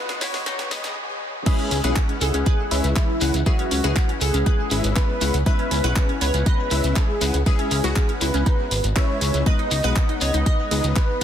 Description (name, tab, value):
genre	progressive house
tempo	120 BPM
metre	4/4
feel	straight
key	C# minor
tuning	A4 = 440 Hz
part	wide unison lead	melody	0.0-11.2 s	E4 to D#5	-27 LUFS	equal	ping-pong delay
part	shimmering ambient pad	sustained chords	0.0-0.9 s	C#3 to C#4	-46 LUFS	right 4 dB	none
part	glassy wavetable pluck	arpeggios	0.0-11.2 s	G#3 to D#5	-31 LUFS	equal	chorus, phaser, sidechain pumping, ping-pong delay
part	supersaw stab	stabs	0.0-11.2 s	G#3 to F#5	-27 LUFS	left 3 dB	sidechain pumping, ping-pong delay
part	riser	sound effects	0.0-1.0 s	none	-38 LUFS	right 1 dB	none
part	house drum kit	drums	0.1-11.2 s	crash cymbal, handclaps, hi-hat, snare drum	-30 LUFS	right 2 dB	none
part	fat analog bass	bass	0.2-11.2 s	G#1 to C#2	-22 LUFS	equal	sidechain pumping
part	shekere	percussion	0.2-11.1 s	none	-32 LUFS	left 3 dB	none
part	electronic kick drum	drums	1.5-11.1 s	none	-20 LUFS	equal	none
room	little or no reverb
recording	dense, heavily limited modern master, high-pass filter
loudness	-19 LUFS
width	side -10 dB against mid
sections	0.0-1.5 A section; 1.5-11.2 B section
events	build-up 0.0-1.5; drum fill 0.0-1.0; riser 0.0-1.0; filter sweep 0.0-1.5; stop 1.0-1.5; drop 1.5-11.2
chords	0.0 G#m; 1.5 C#m7; 9.5 G#m